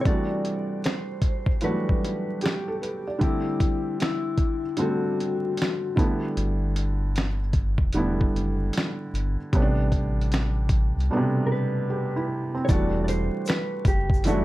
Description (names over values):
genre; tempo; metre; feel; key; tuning
lo-fi hip hop; 76 BPM; 4/4; swing 64% on 16ths; unclear; A4 = 439 Hz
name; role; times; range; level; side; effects
mellow electric guitar; melody; 0.0-5.9, 11.5-14.4 s; E4 to D5; -30 LUFS; left 4 dB; analog delay, plate reverb
felt-muted upright piano; accompaniment; 0.0-14.4 s; B2 to D5; -27 LUFS; right 1 dB; cassette tape
dusty soul sampler-style drum kit; drums; 0.1-14.4 s; hi-hat, kick drum, snare drum; -24 LUFS; equal; overdrive
sub bass with octave; bass; 6.4-14.4 s; E1 to C2; -26 LUFS; equal; none
egg shaker; percussion; 12.7-14.4 s; none; -48 LUFS; left 7 dB; none
room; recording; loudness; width
light reverb; vinyl crackle; -22 LUFS; side -16 dB against mid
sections
0.1-12.7 A section; 12.7-14.4 B section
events
break 11.1-12.7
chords
0.1 Em11; 3.2 D7sus4; 6.0 G69; 9.5 Am11; 12.7 Em11